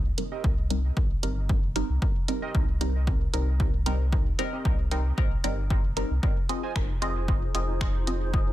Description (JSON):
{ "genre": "dub techno", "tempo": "114 BPM", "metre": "4/4", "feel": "straight", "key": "unclear", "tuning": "A4 = 440 Hz", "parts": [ { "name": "warm sub bass", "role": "bass", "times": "0.0-8.5 s", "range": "F1 to C2", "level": "-28 LUFS", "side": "equal", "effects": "tube saturation, sidechain pumping" }, { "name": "filtered dub chord stab", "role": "stabs", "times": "0.2-8.2 s", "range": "G3 to Eb5", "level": "-32 LUFS", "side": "equal", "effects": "phaser, sidechain pumping, dub echo" }, { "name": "punchy analog drum machine", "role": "drums", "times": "0.2-8.2 s", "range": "finger snaps, hi-hat", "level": "-35 LUFS", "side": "right 3 dB", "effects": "small room reverb, soft clipping on snare" }, { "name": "warbly lo-fi synth keys", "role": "riff", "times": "0.3-6.7 s", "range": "C4 to Ab5", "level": "-39 LUFS", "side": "right 5 dB", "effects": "chorus, sidechain pumping, dub echo" }, { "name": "electronic kick drum", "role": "drums", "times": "0.4-8.4 s", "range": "none", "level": "-26 LUFS", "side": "equal", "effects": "small room reverb" }, { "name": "granular cloud pad", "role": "sustained chords", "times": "6.9-8.5 s", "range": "Eb4 to C5", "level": "-37 LUFS", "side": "equal", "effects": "built-in reverb, sidechain pumping" } ], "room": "digital ambience", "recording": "dense, heavily limited modern master", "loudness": "-24 LUFS", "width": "side -14 dB against mid", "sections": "0.0-8.5 A section", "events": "none", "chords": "0.0 Cm7; 6.2 Fm7", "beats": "0.44 0.97 1.49 | 2.02 2.55 3.07 3.60 | 4.12 4.65 5.18 5.70 | 6.23 6.76 7.28 7.81 | 8.34" }